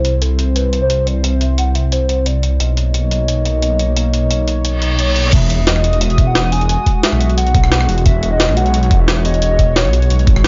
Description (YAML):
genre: liquid drum and bass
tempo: 176 BPM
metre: 4/4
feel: straight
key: E lydian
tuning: A4 = 441 Hz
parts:
  - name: hollow clarinet-like synth lead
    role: melody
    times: 0.0-10.3 s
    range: A4 to G#5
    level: -23 LUFS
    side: equal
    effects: subtle chorus, tape echo
  - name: warm analog pad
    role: sustained chords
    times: 0.0-10.5 s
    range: G#3 to D#6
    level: -26 LUFS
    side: equal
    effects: chorus, sidechain pumping
  - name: swelling detuned saw bass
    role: bass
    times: 0.0-10.5 s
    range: E1 to C2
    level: -17 LUFS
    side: equal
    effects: none
  - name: jungle sampler-style drum kit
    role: drums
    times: 0.0-10.5 s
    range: crash cymbal, hi-hat, rim click, snare drum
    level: -22 LUFS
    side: equal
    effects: none
  - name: reverse cymbal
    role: sound effects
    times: 4.7-5.3 s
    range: none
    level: -23 LUFS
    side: equal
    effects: none
  - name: electronic kick drum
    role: drums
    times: 5.3-10.3 s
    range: none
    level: -15 LUFS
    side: equal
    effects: overdrive
room: digital ambience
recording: nothing above 7.5 kHz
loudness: -15 LUFS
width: mono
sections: 0.0-5.3 A section; 5.3-10.5 B section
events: reverse cymbal 4.7-5.3; drop 5.3-10.5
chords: 0.0 C; 2.6 Bmaj9; 5.3 Emaj9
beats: 0.22 0.56 0.90 | 1.24 1.58 1.92 2.26 | 2.60 2.94 3.28 3.62 | 3.97 4.31 4.65 4.99 | 5.33 5.67 6.01 6.35 | 6.69 7.03 7.38 7.72 | 8.06 8.40 8.74 9.08 | 9.42 9.76 10.10 10.44